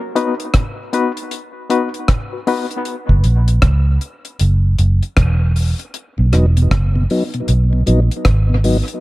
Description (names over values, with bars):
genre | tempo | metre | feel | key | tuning
dub reggae | 78 BPM | 4/4 | swing 62% on 16ths | B major | A4 = 439 Hz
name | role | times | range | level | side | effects
barky reed electric piano | stabs | 0.2-2.7 s | B3 to B4 | -20 LUFS | left 4 dB | overdrive, fast tremolo, dub echo
deep reggae drum kit | drums | 0.2-9.0 s | hi-hat, kick drum, rim click | -18 LUFS | equal | none
vintage muted fingered electric bass | bass | 3.1-8.8 s | E1 to C#2 | -13 LUFS | equal | none
mellow tonewheel organ | accompaniment | 6.2-8.8 s | B2 to D#4 | -20 LUFS | left 1 dB | slow rotary speaker, dub echo
room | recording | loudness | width
small room ambience | dark, warm production | -13 LUFS | side -18 dB against mid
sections
0.0-9.0 A section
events
break 0.0-5.9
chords
0.0 B; 2.9 F#; 5.9 B